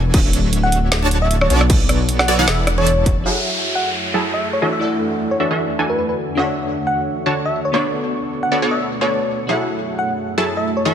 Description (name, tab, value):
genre	future bass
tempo	154 BPM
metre	4/4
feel	swing 55% on 16ths, half-time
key	F# minor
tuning	A4 = 440 Hz
part	wide unison pluck	arpeggios	0.0-3.2 s	D4 to A5	-27 LUFS	right 3 dB	sidechain pumping
part	supersaw stab	riff	0.0-10.9 s	D3 to A5	-21 LUFS	right 1 dB	sidechain pumping, low-pass filter
part	wide detuned saw bass	bass	0.0-3.2 s	D1 to B1	-17 LUFS	equal	chorus, sidechain pumping
part	electronic kick drum	drums	0.1-3.1 s	none	-17 LUFS	equal	distortion
part	trap drum kit	drums	0.1-3.1 s	crash cymbal, hi-hat, rim click, snare drum	-21 LUFS	right 1 dB	low-pass filter on snare, low-pass filter on hats, low-pass filter on cymbals
part	soft struck synth lead	melody	0.6-10.9 s	B4 to F#5	-23 LUFS	left 1 dB	chorus, sidechain pumping, ping-pong delay
part	glassy digital keys	accompaniment	3.2-10.9 s	B3 to C#6	-26 LUFS	left 2 dB	chorus, sidechain pumping, ping-pong delay
part	shimmering ambient pad	sustained chords	3.8-10.9 s	D2 to C#6	-27 LUFS	right 1 dB	chorus, built-in reverb, sidechain pumping
part	downlifter	sound effects	3.3-6.4 s	none	-24 LUFS	equal	none
room	light reverb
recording	none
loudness	-16 LUFS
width	side -9 dB against mid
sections	0.0-3.3 A section; 3.3-10.9 B section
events	drop 0.0-3.3; filter sweep on supersaw synth 3.3-10.9; filter sweep on ambient pad 3.3-10.9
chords	0.1 Dmaj7; 1.5 Bm9; 2.5 E7sus4; 3.3 F#m7; 4.8 E9sus4; 6.4 Dmaj7; 7.7 Bm9; 9.5 F#m7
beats	| 0.14 0.53 0.92 1.31 | 1.70 2.09 2.48 2.87 | 3.26 3.65 4.04 4.42 | 4.82 5.20 5.59 5.98 | 6.37 6.76 7.15 7.54 | 7.93 8.32 8.71 9.10 | 9.49 9.88 10.27 10.66